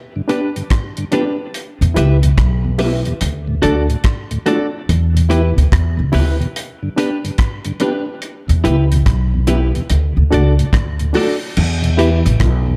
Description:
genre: roots reggae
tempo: 72 BPM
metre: 4/4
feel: swing 63% on 16ths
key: E dorian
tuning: A4 = 440 Hz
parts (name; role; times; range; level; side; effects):
- mellow tonewheel organ; accompaniment; 0.2-12.7 s; D2 to G4; -25 LUFS; equal; slow rotary speaker
- clean electric guitar; accompaniment; 0.3-12.2 s; D4 to E5; -25 LUFS; equal; dub echo
- reed electric piano; stabs; 0.3-12.2 s; D4 to B4; -25 LUFS; equal; overdrive, fast tremolo
- cloth-damped thuddy drum kit; drums; 0.3-12.7 s; crash cymbal, hi-hat, kick drum, rim click; -22 LUFS; equal; none
- bongos; percussion; 1.1-12.6 s; none; -30 LUFS; equal; none
- upright bass; bass; 1.8-12.8 s; A1 to E2; -16 LUFS; equal; none
room: light reverb, small room reverb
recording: dark, warm production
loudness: -16 LUFS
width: mono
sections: 0.0-11.6 A section; 11.6-12.8 B section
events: none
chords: 0.0 G; 1.5 Em; 3.2 D; 4.9 Em; 6.6 G; 8.2 Em; 9.9 D; 11.6 Em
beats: 0.71 | 1.54 2.38 3.21 4.05 | 4.88 5.72 6.55 7.39 | 8.22 9.06 9.89 10.73 | 11.56 12.40

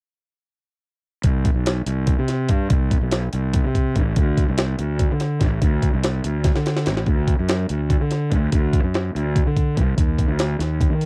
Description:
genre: math rock and midwest emo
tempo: 289 BPM (eighths)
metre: 7/8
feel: straight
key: unclear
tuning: A4 = 440 Hz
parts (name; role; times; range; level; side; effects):
- fuzz fingered electric bass; bass; 1.2-11.1 s; A1 to Eb3; -24 LUFS; equal; overdrive
- jungle sampler-style drum kit; drums; 1.2-11.1 s; hi-hat, kick drum, snare drum; -22 LUFS; equal; cassette tape
room: little or no reverb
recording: home recording on cassette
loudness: -21 LUFS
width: mono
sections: 1.2-11.1 A section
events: drum fill 6.4-7.1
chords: none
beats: | 1.25 1.45 1.66 1.87 2.08 2.29 2.49 | 2.70 2.91 3.12 3.32 3.53 3.74 3.95 | 4.16 4.36 4.57 4.78 4.99 5.20 5.40 | 5.61 5.82 6.03 6.23 6.44 6.65 6.86 | 7.07 7.27 7.48 7.69 7.90 8.10 8.31 | 8.52 8.73 8.93 9.14 9.35 9.56 9.76 | 9.97 10.18 10.39 10.59 10.80 11.01

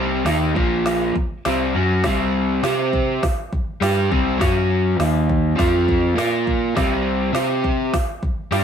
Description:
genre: garage rock duo or trio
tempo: 102 BPM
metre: 4/4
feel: straight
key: unclear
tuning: A4 = 440 Hz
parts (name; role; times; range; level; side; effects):
- crunchy overdriven guitar; riff; 0.0-8.6 s; Bb2 to C5; -19 LUFS; equal; none
- hollow-body short-scale fingered electric bass; bass; 0.0-8.6 s; Bb1 to C3; -25 LUFS; equal; tube saturation
- organic electronic drum kit; drums; 0.3-8.6 s; hi-hat, kick drum, snare drum; -23 LUFS; equal; overdrive
room: moderate studio reverb, RT60 0.7 s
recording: band playing live in one room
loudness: -17 LUFS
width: side -8 dB against mid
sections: 0.0-8.6 A section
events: none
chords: 0.0 C5; 0.6 Bb5; 1.2 C5; 4.4 F#5; 5.0 Eb5; 5.6 F5; 6.2 Bb5; 6.8 C5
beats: 0.26 0.85 1.45 | 2.04 2.63 3.22 3.81 | 4.40 4.99 5.58 6.17 | 6.75 7.34 7.93 8.52

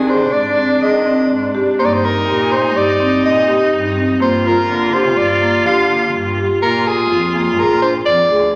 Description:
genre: contemporary instrumental, chamber music in an uneven meter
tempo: 124 BPM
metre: 5/4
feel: straight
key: unclear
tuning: A4 = 440 Hz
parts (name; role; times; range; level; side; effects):
- bright soprano saxophone; melody; 0.0-8.5 s; Ab4 to F5; -19 LUFS; equal; none
- clear viola; second line; 0.0-8.6 s; D4 to F4; -22 LUFS; equal; none
- marimba with medium mallets; arpeggios; 0.0-8.6 s; Bb3 to Ab4; -20 LUFS; equal; none
- warm cello; bass; 0.0-8.5 s; D2 to Eb3; -26 LUFS; equal; none
room: wet recital hall reverb, RT60 1.5 s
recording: none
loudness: -15 LUFS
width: mono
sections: 0.0-8.6 A section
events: none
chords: 0.0 Ab; 1.8 Eb6/G; 4.2 Gm7; 6.6 Bb7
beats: 0.34 0.82 1.31 | 1.79 2.27 2.76 3.24 3.73 | 4.21 4.69 5.18 5.66 6.14 | 6.63 7.11 7.59 8.07

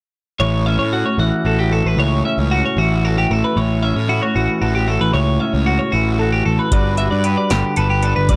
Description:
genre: math rock and midwest emo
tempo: 76 BPM (dotted quarters)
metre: 6/8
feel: straight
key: A mixolydian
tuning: A4 = 440 Hz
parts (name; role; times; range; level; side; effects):
- electric guitar through a small old amp; accompaniment; 0.4-8.4 s; A2 to C#5; -22 LUFS; equal; none
- twelve-string electric guitar; arpeggios; 0.4-8.4 s; F#4 to E5; -23 LUFS; equal; none
- fuzz picked electric bass; bass; 0.4-8.4 s; G1 to A2; -21 LUFS; equal; overdrive
- electro analog drum machine; drums; 6.7-8.4 s; hi-hat, kick drum, snare drum; -21 LUFS; equal; none
room: light reverb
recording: dark, warm production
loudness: -17 LUFS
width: mono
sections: 0.4-8.4 A section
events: none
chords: 0.4 A6; 6.7 Gmaj7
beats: | 0.39 1.18 | 1.97 2.76 | 3.55 4.34 | 5.13 5.92 | 6.71 7.50 | 8.29

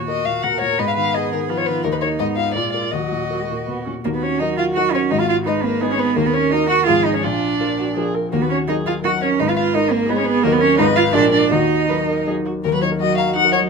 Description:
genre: quick classical-period movement for piano quartet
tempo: 156-175 BPM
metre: 3/4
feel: rubato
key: Eb minor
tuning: A4 = 438 Hz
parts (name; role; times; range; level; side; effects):
- warm cello; second line; 0.0-13.7 s; Gb3 to Cb5; -20 LUFS; right 7 dB; none
- warm baby grand piano; accompaniment; 0.0-13.7 s; Ab1 to Bb5; -22 LUFS; left 4 dB; none
- dark violin; melody; 0.1-13.6 s; Bb4 to Gb5; -22 LUFS; left 8 dB; none
- dark viola; accompaniment; 0.8-13.7 s; Gb3 to Cb5; -24 LUFS; right 3 dB; none
room: light reverb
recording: close, detailed microphones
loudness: -16 LUFS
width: side -5 dB against mid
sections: 0.0-4.0 A section; 4.0-12.6 B section; 12.6-13.7 B section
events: none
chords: 0.0 Ebm; 0.8 Abm; 1.8 Eb5; 2.2 Fdim/Ab; 2.6 Bb7; 2.9 Ebm; 5.1 Abm; 6.2 Ebm; 6.9 Fdim/Ab; 7.2 Bb; 8.3 Ebm; 9.4 Abm; 10.4 Ebm; 10.8 Fdim/Ab; 11.1 Bb7; 11.5 Ebm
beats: 0.08 0.44 | 0.79 1.14 1.50 | 1.84 2.19 2.56 | 2.93 3.31 3.68 | 4.05 4.41 4.76 | 5.12 5.47 5.82 | 6.17 6.52 6.87 | 7.24 7.60 7.97 | 8.33 8.69 9.04 | 9.40 9.74 10.09 | 10.44 10.78 11.14 | 11.51 11.89 12.27 | 12.65 13.00 13.35

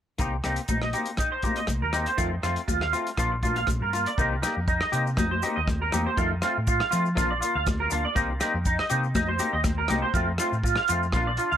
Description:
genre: highlife guitar band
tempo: 121 BPM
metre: 4/4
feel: swing 53% on 16ths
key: C minor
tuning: A4 = 441 Hz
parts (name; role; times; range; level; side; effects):
- clean electric guitar; accompaniment; 0.2-11.6 s; Eb3 to G4; -32 LUFS; left 5 dB; none
- clean electric guitar; arpeggios; 0.2-11.6 s; Eb4 to F5; -27 LUFS; right 3 dB; analog chorus, tape echo
- hollow-body short-scale fingered electric bass; bass; 0.2-11.6 s; Bb1 to F3; -29 LUFS; equal; none
- warm soul drum kit; drums; 0.2-11.5 s; hi-hat, kick drum, rim click; -30 LUFS; equal; none
- congas; percussion; 0.2-11.3 s; none; -33 LUFS; left 3 dB; none
- maracas; percussion; 0.2-11.6 s; none; -38 LUFS; left 6 dB; none
room: light reverb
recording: none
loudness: -23 LUFS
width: side -10 dB against mid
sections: 0.2-4.2 A section; 4.2-11.6 B section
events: none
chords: 0.2 Cm7; 2.2 F7; 3.2 Bb; 4.2 Cm7; 6.2 F7; 7.2 Bb; 8.2 Cm7; 10.1 F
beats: | 0.19 0.69 1.19 1.69 | 2.19 2.69 3.19 3.69 | 4.19 4.69 5.18 5.68 | 6.18 6.68 7.17 7.67 | 8.16 8.66 9.16 9.65 | 10.15 10.64 11.14

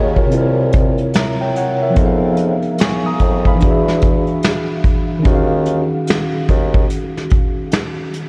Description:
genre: lo-fi hip hop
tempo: 73 BPM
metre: 4/4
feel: swing 62% on 16ths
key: unclear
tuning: A4 = 441 Hz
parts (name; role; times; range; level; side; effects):
- tine electric piano; accompaniment; 0.0-8.3 s; C3 to Eb6; -20 LUFS; equal; cassette tape
- mellow bassoon; bass; 0.0-6.8 s; C2 to F2; -23 LUFS; equal; none
- vintage brush drum kit; drums; 0.2-8.3 s; hi-hat, kick drum, snare drum; -19 LUFS; equal; none
room: moderate huge ambient reverb, RT60 7.2 s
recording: dreamy mix soaked in reverb, cassette tape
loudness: -16 LUFS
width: mono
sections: 0.0-8.3 A section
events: none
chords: 0.3 C7b9; 2.0 Fm7b5; 3.6 E9; 5.3 Ebm11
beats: 0.32 1.14 | 1.97 2.79 3.61 4.43 | 5.25 6.08 6.90 7.72

